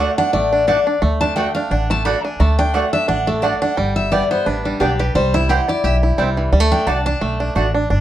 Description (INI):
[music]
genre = bluegrass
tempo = 174 BPM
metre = 4/4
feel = swing 55% on 8ths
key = D mixolydian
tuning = A4 = 438 Hz
[part]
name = bluegrass banjo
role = arpeggios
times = 0.0-8.0 s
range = E3 to G4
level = -20 LUFS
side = right 2 dB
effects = none
[part]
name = mandolin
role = stabs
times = 0.0-7.7 s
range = A3 to G5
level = -21 LUFS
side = right 3 dB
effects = none
[part]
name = upright bass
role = bass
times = 0.0-8.0 s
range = G1 to D2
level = -19 LUFS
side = equal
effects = none
[part]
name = picked steel-string acoustic guitar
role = accompaniment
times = 0.2-7.5 s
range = D4 to B5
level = -20 LUFS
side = left 2 dB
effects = none
[sound]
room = moderate studio reverb, RT60 0.5 s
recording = dark, warm production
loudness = -15 LUFS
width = side -12 dB against mid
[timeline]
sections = 0.0-1.0 A section; 1.0-8.0 A section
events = steel-string acoustic guitar solo 0.0-8.0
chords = 0.0 D; 3.8 G; 5.2 C; 6.5 D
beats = 0.34 0.68 | 1.02 1.37 1.71 2.06 | 2.40 2.74 3.09 3.43 | 3.78 4.12 4.46 4.81 | 5.15 5.50 5.84 6.18 | 6.53 6.87 7.21 7.56 | 7.90